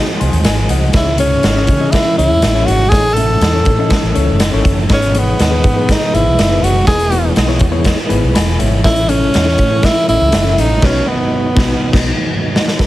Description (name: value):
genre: uptempo 1960s-style soul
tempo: 121 BPM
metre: 4/4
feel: straight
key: B mixolydian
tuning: A4 = 442 Hz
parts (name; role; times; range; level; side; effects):
- reed electric piano; accompaniment; 0.0-12.9 s; G#2 to B#5; -21 LUFS; left 4 dB; fast tremolo
- tonewheel organ; sustained chords; 0.0-12.8 s; B2 to D#5; -25 LUFS; right 2 dB; none
- vintage muted fingered electric bass; bass; 0.2-12.9 s; E1 to C#3; -16 LUFS; equal; none
- raw garage drum kit; drums; 0.2-12.9 s; crash cymbal, hi-hat, kick drum, snare drum; -14 LUFS; equal; none
- breathy tenor saxophone; melody; 1.0-12.1 s; B3 to A4; -17 LUFS; equal; tape echo
room: studio reverb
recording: heavily compressed radio sound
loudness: -10 LUFS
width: side -15 dB against mid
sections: 0.0-12.8 A section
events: band accent 10.8-12.8; drum fill 12.3-12.8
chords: 0.0 G#7/B#; 0.9 C#m; 2.9 A; 4.9 G#m; 6.9 E; 8.9 A; 10.8 B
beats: 0.44 | 0.94 1.43 1.93 2.42 | 2.92 3.41 3.91 4.40 | 4.90 5.39 5.89 6.38 | 6.88 7.37 7.86 8.36 | 8.85 9.34 9.84 10.33 | 10.82 11.32 11.81 12.30 | 12.80